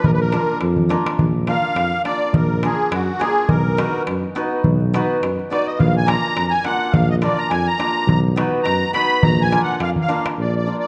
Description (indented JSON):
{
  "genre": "balkan folk, Balkan wedding band",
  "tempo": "104 BPM",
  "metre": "2/4",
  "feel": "swing 56% on 16ths",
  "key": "Bb phrygian dominant",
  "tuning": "A4 = 439 Hz",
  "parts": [
    { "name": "musette accordion", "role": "melody", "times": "0.0-10.9 s", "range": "Gb4 to B5", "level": "-23 LUFS", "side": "equal", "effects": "none" },
    { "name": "breathy tuba", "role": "bass", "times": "0.0-10.7 s", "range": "Bb1 to F#2", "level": "-24 LUFS", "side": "equal", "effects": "none" },
    { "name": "darbuka", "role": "percussion", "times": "0.0-10.4 s", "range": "none", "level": "-23 LUFS", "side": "equal", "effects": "none" },
    { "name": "hammered dulcimer", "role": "accompaniment", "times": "0.3-10.9 s", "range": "Bb3 to B4", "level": "-26 LUFS", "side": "equal", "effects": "none" }
  ],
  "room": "wet recital hall reverb, RT60 1.6 s",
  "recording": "dark, warm production, nothing above 10.8 kHz",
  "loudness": "-19 LUFS",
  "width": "mono",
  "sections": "0.0-1.2 A section; 1.2-10.4 B section",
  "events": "drum fill 0.8-1.2, 9.9-10.4; accordion solo 1.2-10.4",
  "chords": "0.0 Bb; 3.5 B; 5.8 Bb; 8.1 B; 9.2 Bb",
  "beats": "| 0.03 0.61 | 1.19 1.77 | 2.34 2.92 | 3.50 4.07 | 4.65 5.22 | 5.79 6.37 | 6.94 7.51 | 8.08 8.66 | 9.23 9.80 | 10.38"
}